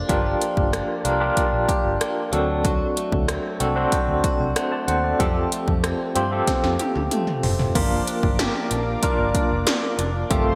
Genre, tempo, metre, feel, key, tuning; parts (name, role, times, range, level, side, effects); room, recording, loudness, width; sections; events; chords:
1980s-style pop; 94 BPM; 4/4; straight; A4 = 440 Hz
barky tine electric piano; accompaniment; 0.0-10.6 s; A3 to A5; -25 LUFS; equal; overdrive, medium tremolo
direct-recorded clean electric guitar; riff; 0.0-10.6 s; F3 to G4; -33 LUFS; equal; lush chorus
vintage muted fingered electric bass; bass; 0.1-10.5 s; F1 to G2; -29 LUFS; equal
80s electronic pad drums; drums; 0.1-10.5 s; crash cymbal, hi-hat, kick drum, rim click, snare drum, toms; -26 LUFS; equal; gated reverb on snare and toms, gated reverb
brassy analog pad; sustained chords; 7.8-10.6 s; A4 to D6; -32 LUFS; equal; chorus
wet plate reverb, RT60 2.8 s; bright 1980s-style digital production; -22 LUFS; mono
0.0-7.8 A section; 7.8-10.6 B section
drum fill 6.5-7.8
0.0 Gm7; 2.3 D7; 5.2 Fadd9; 7.8 Bb/G